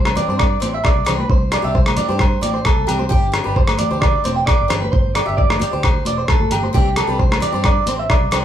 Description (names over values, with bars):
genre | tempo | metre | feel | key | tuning
highlife guitar band | 132 BPM | 4/4 | straight | C major | A4 = 440 Hz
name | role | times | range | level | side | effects
electric guitar at the edge of break-up | arpeggios | 0.0-8.4 s | G4 to G5 | -20 LUFS | right 3 dB | none
fingered electric bass | bass | 0.0-8.4 s | E1 to G2 | -24 LUFS | equal | none
dusty soul sampler-style drum kit | drums | 0.1-8.4 s | hi-hat, kick drum, rim click | -17 LUFS | equal | overdrive
agogo bells | percussion | 0.1-8.4 s | none | -26 LUFS | left 4 dB | none
congas | percussion | 0.1-8.0 s | none | -27 LUFS | left 2 dB | none
picked steel-string acoustic guitar | accompaniment | 0.2-8.4 s | E3 to G4 | -28 LUFS | left 7 dB | none
room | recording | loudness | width
moderate large studio reverb, RT60 0.9 s | band playing live in one room | -14 LUFS | side -10 dB against mid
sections
0.0-8.4 A section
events
none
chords
0.0 Cadd9; 3.1 Gsus4; 6.7 Cadd9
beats
0.40 0.85 | 1.30 1.76 2.21 2.67 | 3.12 3.57 4.03 4.48 | 4.93 5.39 5.84 6.29 | 6.75 7.20 7.65 8.11